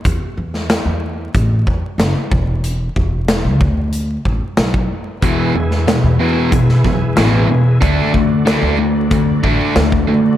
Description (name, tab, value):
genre	classic rock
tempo	93 BPM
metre	4/4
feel	straight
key	unclear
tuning	A4 = 440 Hz
part	upright bass	bass	0.1-10.0 s	E1 to E2	-18 LUFS	equal	none
part	big rock drum kit	drums	0.1-10.1 s	hi-hat, kick drum, snare drum	-18 LUFS	equal	none
part	bright tonewheel organ	sustained chords	5.2-10.4 s	D4 to E5	-25 LUFS	equal	overdrive, chorus vibrato, slow rotary speaker
part	crunchy overdriven guitar	riff	5.2-10.4 s	E2 to D4	-17 LUFS	left 6 dB	none
part	overdriven electric guitar	riff	5.2-10.4 s	E2 to D4	-16 LUFS	right 5 dB	none
room	light reverb, small room ambience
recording	vinyl crackle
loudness	-13 LUFS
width	side -12 dB against mid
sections	0.0-10.4 A section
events	none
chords	0.1 N.C.; 1.3 A5; 2.3 N.C.; 3.6 D5; 5.2 E; 7.8 D